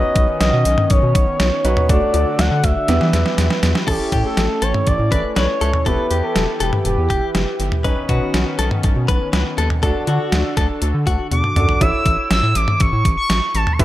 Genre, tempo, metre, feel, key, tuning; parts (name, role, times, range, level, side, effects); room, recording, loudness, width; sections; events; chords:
synth-pop; 121 BPM; 4/4; straight; A4 = 440 Hz
expressive portamento lead; melody; 0.0-7.6, 11.3-13.8 s; G4 to E6; -20 LUFS; equal; chorus, dub echo
clear concert grand piano; accompaniment; 0.0-13.8 s; A3 to E5; -26 LUFS; right 2 dB; dub echo
chorused pulse-width pad; sustained chords; 0.0-11.8 s; D3 to B4; -27 LUFS; equal
round analog bass; bass; 0.0-13.8 s; E1 to E3; -19 LUFS; equal
detuned 8-bit digital drum machine; drums; 0.2-13.8 s; cowbell, crash cymbal, hi-hat, kick drum, snare drum, toms; -19 LUFS; equal; overdrive, dub echo
direct-recorded clean electric guitar; second line; 3.9-11.3 s; F#4 to B4; -25 LUFS; left 4 dB; dub echo
moderate spring reverb, RT60 2.0 s; echo-heavy mix; -15 LUFS; side -14 dB against mid
0.0-3.9 A section; 3.9-11.8 B section; 11.8-13.8 A section
drum fill 2.9-3.9, 11.3-11.8
0.0 Badd9; 1.9 D; 2.9 Em; 3.9 A; 5.9 Em; 7.8 Badd9; 9.8 D; 11.8 A